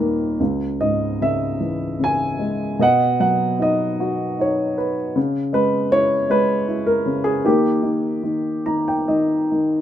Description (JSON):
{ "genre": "classical, lyrical solo piano", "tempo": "77 BPM", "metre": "3/4", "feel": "uneven beats, rubato", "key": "unclear", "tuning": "A4 = 440 Hz", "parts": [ { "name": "dark upright piano", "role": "solo", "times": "0.0-9.8 s", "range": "C#2 to A#5", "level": "-18 LUFS", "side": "equal", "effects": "none" } ], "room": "light reverb", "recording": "none", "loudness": "-18 LUFS", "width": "side -11 dB against mid", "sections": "0.0-9.8 A section", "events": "upright piano fill 8.2-9.8", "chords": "0.4 C#m; 2.8 B; 5.2 C#m; 7.4 D#" }